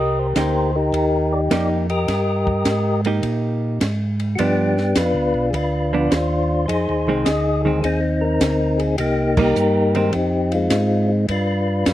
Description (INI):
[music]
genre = soul jazz organ trio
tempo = 104 BPM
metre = 4/4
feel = swing 67% on 8ths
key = C minor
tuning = A4 = 440 Hz
[part]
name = percussive tonewheel organ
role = melody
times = 0.0-11.9 s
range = Ab3 to Eb5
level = -19 LUFS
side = left 2 dB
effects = slow rotary speaker, slapback echo
[part]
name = mellow tonewheel organ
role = bass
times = 0.0-11.9 s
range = B1 to Bb2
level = -22 LUFS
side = right 1 dB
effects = slow rotary speaker
[part]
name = hollow-body jazz guitar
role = accompaniment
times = 0.4-10.1 s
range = Eb3 to G4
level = -22 LUFS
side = right 3 dB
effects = none
[part]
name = compact cocktail drum kit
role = drums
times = 0.4-11.9 s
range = crash cymbal, hi-hat, kick drum, ride cymbal, snare drum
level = -26 LUFS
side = right 1 dB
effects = none
[sound]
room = little or no reverb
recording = recorded outdoors, with no room sound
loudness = -17 LUFS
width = side -14 dB against mid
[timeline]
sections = 0.0-11.9 A section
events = band accent 9.3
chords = 0.0 Cm7; 4.4 G7; 6.7 Fm7; 9.0 Cm7; 10.1 Fm7; 11.3 G7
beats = 0.36 0.93 1.51 | 2.09 2.66 3.24 3.81 | 4.39 4.96 5.54 6.12 | 6.69 7.27 7.84 8.42 | 8.99 9.57 10.14 10.72 | 11.29 11.87